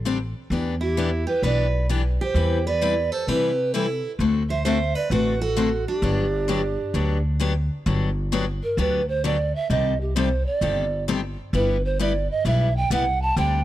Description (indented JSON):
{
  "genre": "acoustic string swing (jazz manouche)",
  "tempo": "131 BPM",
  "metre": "4/4",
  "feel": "swing 65% on 8ths",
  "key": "G major",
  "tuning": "A4 = 441 Hz",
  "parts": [
    { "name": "upright bass", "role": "bass", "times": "0.0-13.6 s", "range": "G1 to C3", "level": "-24 LUFS", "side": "equal", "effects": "none" },
    { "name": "picked steel-string acoustic guitar", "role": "accompaniment", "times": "0.1-13.6 s", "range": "C3 to B4", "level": "-25 LUFS", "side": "left 5 dB", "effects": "none" },
    { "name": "mellow hollow polished pan flute", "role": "melody", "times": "0.8-13.6 s", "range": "G4 to A5", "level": "-25 LUFS", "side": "right 3 dB", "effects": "none" },
    { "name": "picked steel-string acoustic guitar", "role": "second line", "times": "0.8-7.2 s", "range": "D4 to C5", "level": "-31 LUFS", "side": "right 4 dB", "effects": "none" }
  ],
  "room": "little or no reverb",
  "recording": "dry, close 1970s-style studio recording",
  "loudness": "-20 LUFS",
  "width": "side -14 dB against mid",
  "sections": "0.0-7.9 A section; 7.9-13.6 B section",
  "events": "pan flute solo 7.9-13.6",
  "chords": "0.0 D7sus4; 0.5 Em7; 2.4 Cmaj7/E; 4.2 D7; 6.0 Gmaj7; 9.7 Cm6; 11.5 G6"
}